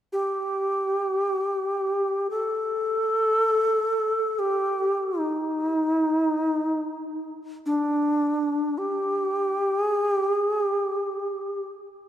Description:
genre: japanese traditional.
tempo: free time.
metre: none.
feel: none.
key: unclear.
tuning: A4 = 440 Hz.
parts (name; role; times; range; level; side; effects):
breathy bright long shakuhachi; melody; 0.1-11.7 s; D4 to A4; -23 LUFS; equal; none.
room: wet church reverb, RT60 3.1 s.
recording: dark, warm production.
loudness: -23 LUFS.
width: side -11 dB against mid.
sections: 0.0-12.1 A section.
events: none.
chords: none.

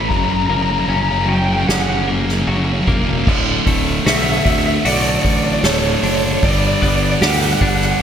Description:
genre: post-rock.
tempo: 76 BPM.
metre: 4/4.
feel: straight.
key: D major.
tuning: A4 = 440 Hz.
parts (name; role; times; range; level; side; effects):
lead guitar through a small cranked amp; melody; 0.0-8.0 s; C#5 to B5; -20 LUFS; equal; overdrive, slapback echo.
twelve-string electric guitar; arpeggios; 0.0-8.0 s; D2 to G4; -22 LUFS; left 2 dB; slapback echo.
thick fuzz guitar; riff; 0.0-8.0 s; D2 to G3; -19 LUFS; right 1 dB; distortion.
modern bright fingered electric bass; bass; 0.0-7.9 s; D1 to D2; -22 LUFS; equal; none.
soft-mallet drum kit; drums; 0.1-7.9 s; crash cymbal, hi-hat, kick drum, snare drum; -20 LUFS; equal; none.
room: light reverb, studio ambience.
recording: none.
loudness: -14 LUFS.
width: side -8 dB against mid.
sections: 0.0-3.3 A section; 3.3-8.0 B section.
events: build-up 0.0-3.3.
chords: 0.1 F#; 3.3 Dmaj7; 6.4 Gmaj7.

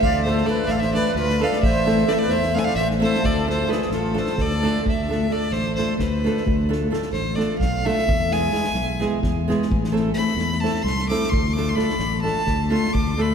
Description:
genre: balkan folk, Balkan wedding band.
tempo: 260 BPM (eighths).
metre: 7/8.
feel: straight.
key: D dorian sharp4.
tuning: A4 = 443 Hz.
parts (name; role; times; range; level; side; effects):
clear fiddle; melody; 0.0-13.3 s; A4 to D6; -25 LUFS; right 1 dB; none.
accordion; second line; 0.0-4.9 s; F4 to E5; -28 LUFS; equal; light tremolo tuning.
fingered electric bass; bass; 0.0-13.3 s; A1 to E2; -24 LUFS; left 2 dB; none.
unplugged drum kit; percussion; 0.0-13.2 s; kick drum, snare drum; -29 LUFS; equal; none.
nylon-string guitar; accompaniment; 0.3-13.3 s; G#3 to A4; -23 LUFS; equal; none.
room: wet cathedral reverb, RT60 4.5 s.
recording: recorded in a church or concert hall.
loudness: -19 LUFS.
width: side -7 dB against mid.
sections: 0.0-4.9 A section; 4.9-13.3 B section.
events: fiddle solo 4.9-13.3.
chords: 0.0 Dm; 1.6 Am; 3.2 Dm; 8.1 E; 9.7 Am; 11.3 Dm.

